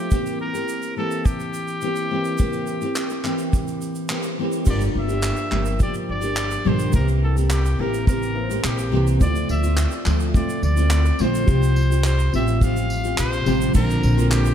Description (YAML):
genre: acoustic pop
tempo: 106 BPM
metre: 4/4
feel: straight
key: unclear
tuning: A4 = 442 Hz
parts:
  - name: clear trumpet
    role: melody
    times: 0.0-14.5 s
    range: G4 to F5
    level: -28 LUFS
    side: equal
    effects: none
  - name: nylon-string guitar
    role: accompaniment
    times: 0.0-14.5 s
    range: G2 to G4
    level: -24 LUFS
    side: equal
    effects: double-tracked left and right
  - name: vintage brush drum kit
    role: drums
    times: 0.1-14.4 s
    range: crash cymbal, handclaps, kick drum, tambourine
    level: -24 LUFS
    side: equal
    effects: none
  - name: tube shaker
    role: percussion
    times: 0.1-14.5 s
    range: none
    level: -39 LUFS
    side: right 10 dB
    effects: none
  - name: felt-muted upright piano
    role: accompaniment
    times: 4.7-14.5 s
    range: G3 to D5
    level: -34 LUFS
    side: left 5 dB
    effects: none
  - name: upright bass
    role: bass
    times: 4.7-14.5 s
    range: G1 to D2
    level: -21 LUFS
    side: equal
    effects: none
room: light reverb, small room ambience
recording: none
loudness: -18 LUFS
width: side -9 dB against mid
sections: 0.0-4.7 A section; 4.7-13.7 B section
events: none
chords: 0.1 C7/E; 4.7 Gm7; 6.9 C7; 9.2 Dm7; 11.5 Csus4; 13.7 Bbadd9